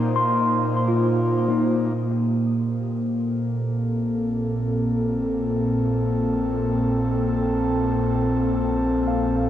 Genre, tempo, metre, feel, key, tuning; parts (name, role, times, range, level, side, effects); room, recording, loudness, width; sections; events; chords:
ambient; 74 BPM; 4/4; straight; A4 = 440 Hz
airy breathy pad; sustained chords; 0.0-9.5 s; Bb2 to C5; -21 LUFS; equal; chorus
wind-like tuned noise texture; texture; 0.0-2.0 s; Eb4 to Eb5; -45 LUFS; left 1 dB
mellow tine electric piano; arpeggios; 0.2-9.5 s; Bb3 to C6; -27 LUFS; equal; medium stereo tremolo, tape echo
round analog bass; bass; 1.9-9.5 s; Bb1; -32 LUFS; equal
wet lush hall reverb, RT60 2.7 s; worn, warbling old tape, cassette tape, warbly pitch drift; -20 LUFS; side -11 dB against mid
0.0-2.0 A section; 2.0-9.5 B section
fade-in on analog synth bass 2.0-9.5; filter sweep on analog synth pad 2.0-9.5
0.0 Cm/Bb; 2.0 Bbmaj7sus2